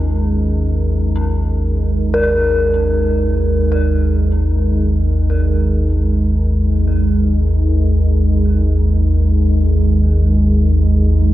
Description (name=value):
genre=dark ambient drone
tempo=free time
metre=none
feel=none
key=unclear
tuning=A4 = 440 Hz
part: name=deep dark ambient pad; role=sustained chords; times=0.0-11.3 s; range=G#3 to A#4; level=-21 LUFS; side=right 1 dB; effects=chorus, built-in reverb
part: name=dark detuned synth bell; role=arpeggios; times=0.0-11.3 s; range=C#4 to A#4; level=-22 LUFS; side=left 1 dB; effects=chorus, tape echo
part: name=deep rumbling drone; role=drone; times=0.0-11.3 s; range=G#1 to D#2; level=-14 LUFS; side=equal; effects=built-in reverb, wide subtle chorus
part: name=bronze singing bowl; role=texture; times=0.0-11.3 s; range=none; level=barely audible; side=none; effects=none
room=wet cathedral reverb, RT60 5.2 s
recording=worn, warbling old tape, cassette tape, warbly pitch drift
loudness=-13 LUFS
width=side -14 dB against mid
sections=0.0-11.3 A section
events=fade-in on ambient pad 0.0-11.3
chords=0.0 G#5